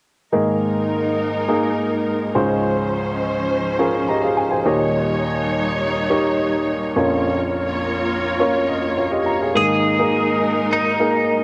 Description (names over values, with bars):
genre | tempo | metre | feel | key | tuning
pop | 104 BPM | 4/4 | straight | Ab major | A4 = 440 Hz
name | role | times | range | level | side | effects
warm upright piano | accompaniment | 0.3-11.4 s | Bb1 to Bb5 | -21 LUFS | equal | cassette tape
rich studio string section | sustained chords | 0.3-11.4 s | F3 to Db5 | -26 LUFS | equal | cassette tape
twelve-string electric guitar | melody | 9.6-11.4 s | Eb4 to Ab4 | -22 LUFS | equal | spring reverb, cassette tape
room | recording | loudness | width
moderate lush hall reverb, RT60 2.7 s | home recording on cassette | -20 LUFS | mono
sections
0.3-9.6 A section; 9.6-11.4 B section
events
upright piano fill 3.8-4.9, 8.4-9.6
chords
0.3 Absus2; 2.3 Dbmaj7; 4.7 Eb7; 7.0 Bbm; 9.6 Absus2